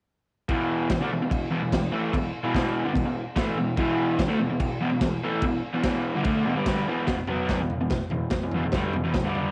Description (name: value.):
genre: garage rock duo or trio.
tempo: 146 BPM.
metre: 4/4.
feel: straight.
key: unclear.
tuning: A4 = 440 Hz.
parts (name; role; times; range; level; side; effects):
raw garage guitar; riff; 0.5-9.5 s; E2 to D4; -27 LUFS; equal; overdrive, cassette tape.
crunchy breakbeat drum kit; drums; 0.5-9.4 s; crash cymbal, kick drum, snare drum, toms; -31 LUFS; equal; cassette tape.
room: moderate spring reverb, RT60 2.0 s, studio reverb.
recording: home recording on cassette.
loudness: -26 LUFS.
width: mono.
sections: 0.5-7.1 A section; 7.1-9.5 B section.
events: none.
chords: 0.5 E5.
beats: | 0.50 0.91 1.32 1.73 | 2.14 2.56 2.96 3.38 | 3.79 4.20 4.61 5.02 | 5.43 5.84 6.25 6.67 | 7.08 7.49 7.91 8.32 | 8.74 9.15.